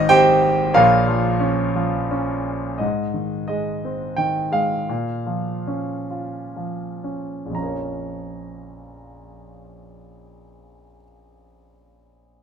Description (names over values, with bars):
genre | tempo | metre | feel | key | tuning
classical, lyrical solo piano | 56-93 BPM | 3/4 | rubato | Bb dorian | A4 = 440 Hz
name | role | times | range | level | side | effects
clear concert grand piano | solo | 0.0-12.4 s | Ab1 to Bb5 | -19 LUFS | right 1 dB | none
room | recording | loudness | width
light reverb | minimal, uncompressed stereo recording | -19 LUFS | side -8 dB against mid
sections
0.0-2.8 A section; 2.8-7.5 B section; 7.5-12.4 C section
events
slowing down 2.8-7.5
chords
0.0 Ab; 0.7 Bbm; 2.8 Ab; 4.9 Bbm